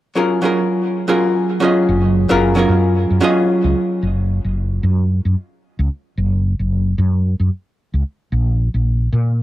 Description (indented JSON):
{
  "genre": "sunset chillout",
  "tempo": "112 BPM",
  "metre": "4/4",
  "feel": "swing 56% on 16ths",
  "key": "F# major",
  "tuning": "A4 = 440 Hz",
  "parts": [
    { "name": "archtop guitar, miked and amplified", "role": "accompaniment", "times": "0.2-4.0 s", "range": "F#3 to D#5", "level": "-15 LUFS", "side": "equal", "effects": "auto-pan, tape echo" },
    { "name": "woody fretless electric bass", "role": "bass", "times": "1.9-9.4 s", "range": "F#1 to A#2", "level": "-16 LUFS", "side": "equal", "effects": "ensemble chorus" }
  ],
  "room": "light reverb",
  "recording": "dry, gritty hardware recording",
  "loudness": "-15 LUFS",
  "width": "side -15 dB against mid",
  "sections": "0.0-4.0 A section; 4.0-9.4 B section",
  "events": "none",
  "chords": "0.0 F#maj9; 4.0 F#5; 8.3 A#5",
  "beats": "0.28 0.82 1.35 | 1.89 2.42 2.96 3.50 | 4.03 4.57 5.10 5.64 | 6.17 6.71 7.25 7.78 | 8.32 8.85 9.39"
}